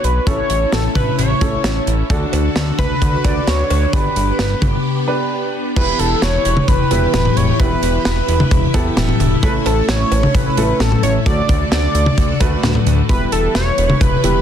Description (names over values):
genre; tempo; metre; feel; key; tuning
synth-pop; 131 BPM; 4/4; straight; unclear; A4 = 440 Hz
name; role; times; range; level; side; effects
octave-doubled lead; melody; 0.0-14.4 s; A4 to D5; -20 LUFS; equal; chorus, ping-pong delay, shimmer reverb
warm baby grand piano; accompaniment; 0.0-14.4 s; G3 to B4; -24 LUFS; right 3 dB; shimmer reverb
string machine, violins; sustained chords; 0.0-14.4 s; D3 to B4; -23 LUFS; equal; ensemble chorus, shimmer reverb
fat analog bass; bass; 0.0-14.4 s; E1 to D2; -19 LUFS; equal; none
modern studio drum kit; drums; 0.0-14.3 s; cowbell, crash cymbal, hi-hat, kick drum, snare drum, toms; -17 LUFS; left 1 dB; none
room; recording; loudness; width
light reverb, studio ambience; dense, heavily limited modern master; -13 LUFS; side -9 dB against mid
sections
0.0-5.8 A section; 5.8-14.4 B section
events
break 4.8-5.8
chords
0.3 A; 2.1 D; 3.9 G; 5.8 Em; 9.4 A; 11.3 D; 13.1 Em